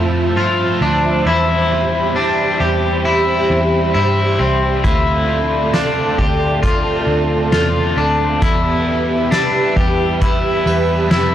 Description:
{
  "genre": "dream pop",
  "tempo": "67 BPM",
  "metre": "4/4",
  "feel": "straight",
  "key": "D dorian",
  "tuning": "A4 = 441 Hz",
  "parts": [
    { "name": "crunchy overdriven guitar", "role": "accompaniment", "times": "0.0-11.3 s", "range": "E2 to F4", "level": "-22 LUFS", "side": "right 2 dB", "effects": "tremolo, ensemble chorus" },
    { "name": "soft string machine", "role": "sustained chords", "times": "0.0-11.3 s", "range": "F3 to C6", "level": "-20 LUFS", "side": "right 1 dB", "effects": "ensemble chorus" },
    { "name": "electric guitar at the edge of break-up", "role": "arpeggios", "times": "0.0-11.3 s", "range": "C4 to G4", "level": "-18 LUFS", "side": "left 2 dB", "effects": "lush chorus, analog delay" },
    { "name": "vintage muted picked electric bass", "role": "bass", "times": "0.0-11.3 s", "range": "C2 to G2", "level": "-20 LUFS", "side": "equal", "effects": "transformer saturation" },
    { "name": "soft-mallet drum kit", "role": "drums", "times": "4.8-11.3 s", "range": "hi-hat, kick drum, snare drum", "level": "-18 LUFS", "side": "equal", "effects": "none" },
    { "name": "harpsichord", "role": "texture", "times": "5.7-11.3 s", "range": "B4 to F5", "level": "-30 LUFS", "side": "right 1 dB", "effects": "analog delay" }
  ],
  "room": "light reverb, small room ambience",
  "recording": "dry, gritty hardware recording, cassette tape",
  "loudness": "-13 LUFS",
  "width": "side -11 dB against mid",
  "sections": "0.0-11.3 A section",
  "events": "none",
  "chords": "0.0 Fmaj7; 1.3 Cmaj7/E; 4.8 Dm7; 8.4 Em",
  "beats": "0.37 | 1.27 2.16 3.06 3.95 | 4.85 5.74 6.64 7.54 | 8.43 9.33 10.22 11.12"
}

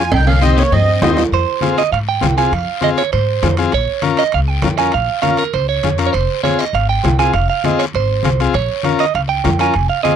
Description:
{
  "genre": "latin, cumbia",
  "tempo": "199 BPM",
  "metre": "4/4",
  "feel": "straight",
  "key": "F minor",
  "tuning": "A4 = 440 Hz",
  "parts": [
    { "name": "accordion", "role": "melody", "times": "0.0-1.2 s", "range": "Db5 to Ab5", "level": "-17 LUFS", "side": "right 3 dB", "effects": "light tremolo tuning" },
    { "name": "clean electric guitar", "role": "second line", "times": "0.0-10.2 s", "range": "Bb3 to Ab5", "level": "-18 LUFS", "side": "right 12 dB", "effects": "none" },
    { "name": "combo organ", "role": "accompaniment", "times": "0.0-10.2 s", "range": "C4 to Bb4", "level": "-17 LUFS", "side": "left 8 dB", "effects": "none" },
    { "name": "upright bass", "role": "bass", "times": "0.0-9.9 s", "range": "F1 to Ab2", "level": "-17 LUFS", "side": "left 1 dB", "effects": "none" },
    { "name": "cowbell and timbales", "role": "percussion", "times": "0.1-10.2 s", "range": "none", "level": "-24 LUFS", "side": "right 4 dB", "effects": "none" },
    { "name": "guiro", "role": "percussion", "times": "0.1-10.2 s", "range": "none", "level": "-29 LUFS", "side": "left 21 dB", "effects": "none" },
    { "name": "congas", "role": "percussion", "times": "0.3-10.2 s", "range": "none", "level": "-23 LUFS", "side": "left 4 dB", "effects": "none" }
  ],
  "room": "little or no reverb",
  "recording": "dry, close 1970s-style studio recording",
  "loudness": "-13 LUFS",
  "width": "side -8 dB against mid",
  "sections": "0.0-1.3 A section; 1.3-10.2 B section",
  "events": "drum fill 0.1-1.3; clean electric guitar solo 1.3-10.2",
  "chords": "0.1 Cm; 1.3 Fm; 3.7 Bbm; 6.1 Fm; 8.5 Bbm",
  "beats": "| 0.11 0.41 0.71 1.02 | 1.32 1.62 1.92 2.22 | 2.52 2.82 3.12 3.43 | 3.73 4.03 4.33 4.63 | 4.93 5.23 5.54 5.84 | 6.14 6.44 6.74 7.04 | 7.34 7.64 7.94 8.24 | 8.55 8.85 9.15 9.45 | 9.75 10.05"
}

